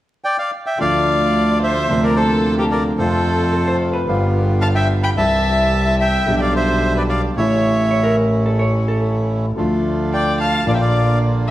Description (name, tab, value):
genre	tango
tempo	109 BPM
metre	4/4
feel	rubato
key	D minor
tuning	A4 = 440 Hz
part	bandoneon	melody	0.2-11.2 s	G4 to B5	-20 LUFS	equal	none
part	warm violin	second line	0.8-11.5 s	G4 to G5	-25 LUFS	left 3 dB	none
part	warm concert grand piano	accompaniment	0.8-11.5 s	G1 to G4	-21 LUFS	left 1 dB	none
part	bandoneon	stabs	0.8-11.5 s	E3 to F4	-27 LUFS	right 2 dB	none
part	clear double bass	bass	0.8-11.5 s	G1 to F2	-19 LUFS	right 1 dB	none
part	vintage hollow-body jazz guitar	second line	3.5-4.4, 7.9-9.9 s	A4 to C#5	-24 LUFS	equal	none
room	wet recital hall reverb, RT60 1.6 s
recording	vinyl crackle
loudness	-15 LUFS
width	side -14 dB against mid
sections	0.8-11.5 A section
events	none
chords	0.0 Dsus4; 0.8 Dm; 1.9 Bbadd9/D; 3.0 F; 4.1 G7; 5.2 C; 6.3 G/B; 7.4 A; 9.6 Dm; 10.7 Bb